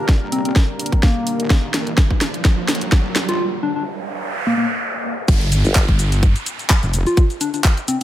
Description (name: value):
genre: bass house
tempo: 127 BPM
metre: 4/4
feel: swing 55% on 16ths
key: G minor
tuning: A4 = 440 Hz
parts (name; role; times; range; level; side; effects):
- soft struck synth lead; melody; 0.0-8.0 s; Bb3 to F4; -22 LUFS; left 2 dB; chorus, digital delay
- sweeping resonant pad; sustained chords; 0.0-3.4 s; G3 to Bb4; -28 LUFS; equal; chorus, sidechain pumping
- wobble bass; bass; 0.0-7.0 s; F1 to Bb1; -21 LUFS; equal; chorus, tube saturation, sidechain pumping, high-pass filter
- riser, noise sweep and downlifter; sound effects; 0.0-8.0 s; none; -27 LUFS; right 2 dB; none
- deep dark ambient pad; texture; 0.0-3.4 s; G4 to Bb5; -38 LUFS; right 1 dB; none
- electronic kick drum; drums; 0.1-7.7 s; none; -14 LUFS; equal; overdrive
- garage drum kit; drums; 0.1-8.0 s; crash cymbal, handclaps, hi-hat, shaker, snare drum; -22 LUFS; equal; overdrive
- formant-sweep wobble bass; bass; 5.6-5.9 s; G1; -18 LUFS; equal; chorus, overdrive, sidechain pumping
room: digital ambience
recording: none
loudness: -16 LUFS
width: side -13 dB against mid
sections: 0.0-5.3 A section; 5.3-8.0 B section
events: build-up 0.0-5.3; drum fill 0.0-3.4; riser 0.0-3.4; break 3.4-5.3; noise sweep 3.4-5.3; drop 5.3-8.0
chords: 0.0 Gm; 5.3 N.C.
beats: 0.09 0.56 1.03 | 1.50 1.98 2.45 2.92 | 3.39 3.87 4.34 4.81 | 5.28 5.75 6.23 6.70 | 7.17 7.64